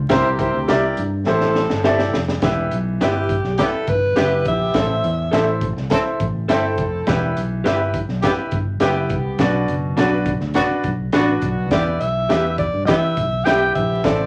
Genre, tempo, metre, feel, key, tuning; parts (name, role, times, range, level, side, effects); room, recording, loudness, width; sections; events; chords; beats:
uptempo 1960s-style soul; 103 BPM; 4/4; straight; E minor; A4 = 440 Hz
fingered electric bass; bass; 0.0-14.3 s; E1 to E3; -26 LUFS; equal
warm horn section; second line; 0.1-14.2 s; B3 to A4; -27 LUFS; equal
clear baby grand piano; accompaniment; 0.1-14.3 s; A2 to G5; -24 LUFS; equal
crunchy breakbeat drum kit; drums; 0.1-14.2 s; hi-hat, kick drum, snare drum; -26 LUFS; equal
electric guitar through a small old amp; stabs; 0.7-13.6 s; D4 to E5; -25 LUFS; equal
breathy alto saxophone; melody; 3.0-5.6, 11.7-14.3 s; G4 to G5; -23 LUFS; equal
wet club reverb, RT60 0.5 s; vinyl crackle; -19 LUFS; mono
0.0-2.4 A section; 2.4-14.3 B section
drum fill 1.3-2.4
0.1 C7; 1.3 Am7; 2.4 Em; 4.7 Am; 7.1 Em; 9.4 Bm; 11.7 Em
| 0.11 0.69 1.27 1.85 | 2.43 3.01 3.59 4.17 | 4.75 5.33 5.91 6.49 | 7.07 7.65 8.23 8.81 | 9.39 9.97 10.55 11.13 | 11.72 12.30 12.88 13.46 | 14.04